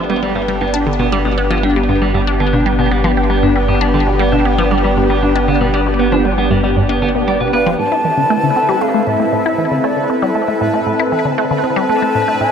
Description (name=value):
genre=ambient, sequencer-driven space music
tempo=117 BPM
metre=4/4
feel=straight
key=A minor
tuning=A4 = 436 Hz
part: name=lush unison pad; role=sustained chords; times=0.0-12.5 s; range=B3 to A4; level=-17 LUFS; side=left 1 dB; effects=chorus, phaser
part: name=resonant blip pluck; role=riff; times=0.0-12.5 s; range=G2 to E4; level=-18 LUFS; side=equal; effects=phaser, vintage 12-bit sampler grit, tape echo
part: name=warm sub bass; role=bass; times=0.0-7.8 s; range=G1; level=-19 LUFS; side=equal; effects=none
part: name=clean electric guitar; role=arpeggios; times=0.1-7.7 s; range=G3 to D5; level=-20 LUFS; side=moving between left 2 dB and right 5 dB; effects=auto-pan, low-pass filter, tape echo
part: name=mellow hollow concert flute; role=melody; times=7.5-12.5 s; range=D5 to A5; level=-18 LUFS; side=left 1 dB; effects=tape echo
part: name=bubbling stepped-filter texture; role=texture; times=8.2-12.5 s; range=B4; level=-24 LUFS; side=right 1 dB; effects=chorus, built-in reverb
room=wet huge ambient reverb, RT60 8.9 s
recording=none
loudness=-12 LUFS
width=side -7 dB against mid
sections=0.0-7.8 A section; 7.8-12.5 B section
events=filter sweep on synth arpeggio sound 7.8-12.5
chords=0.0 G; 7.8 Am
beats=0.10 0.61 1.12 | 1.64 2.15 2.66 3.17 | 3.69 4.20 4.71 5.22 | 5.74 6.25 6.76 7.28 | 7.79 8.30 8.81 9.33 | 9.84 10.35 10.87 11.38 | 11.89 12.40